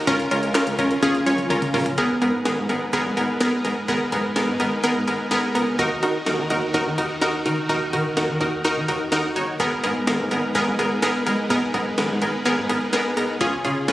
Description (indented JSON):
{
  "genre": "synth-pop",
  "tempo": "126 BPM",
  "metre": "4/4",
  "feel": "straight",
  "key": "unclear",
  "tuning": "A4 = 440 Hz",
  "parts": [
    { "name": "string machine, violas", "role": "sustained chords", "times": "0.0-13.9 s", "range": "Db3 to Cb5", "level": "-28 LUFS", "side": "equal", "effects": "ensemble chorus" },
    { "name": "wide unison pluck", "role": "accompaniment", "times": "0.1-13.9 s", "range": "Cb4 to Db5", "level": "-21 LUFS", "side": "equal", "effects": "none" },
    { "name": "smooth gliding synth bass", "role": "bass", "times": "0.1-13.9 s", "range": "Gb1 to Eb3", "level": "-29 LUFS", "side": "equal", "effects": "none" },
    { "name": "jungle sampler-style drum kit", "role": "drums", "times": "0.1-13.9 s", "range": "handclaps, hi-hat, kick drum, snare drum, toms", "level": "-30 LUFS", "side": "equal", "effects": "none" }
  ],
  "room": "wet lush hall reverb, RT60 1.7 s",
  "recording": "recorded on a phone in the room, studio reverb, compression",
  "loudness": "-19 LUFS",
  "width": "side -16 dB against mid",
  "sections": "0.0-2.0 A section; 2.0-13.9 B section",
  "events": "drum fill 1.0-2.0",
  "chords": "0.1 Bbm/Db; 2.0 Abmadd9; 5.8 Ebm; 9.6 Abmadd9; 13.4 Db",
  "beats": "| 0.07 0.55 1.03 1.50 | 1.98 2.46 2.93 3.41 | 3.88 4.36 4.84 5.31 | 5.79 6.26 6.74 7.22 | 7.69 8.17 8.65 9.12 | 9.60 10.07 10.55 11.03 | 11.50 11.98 12.46 12.93 | 13.41 13.88"
}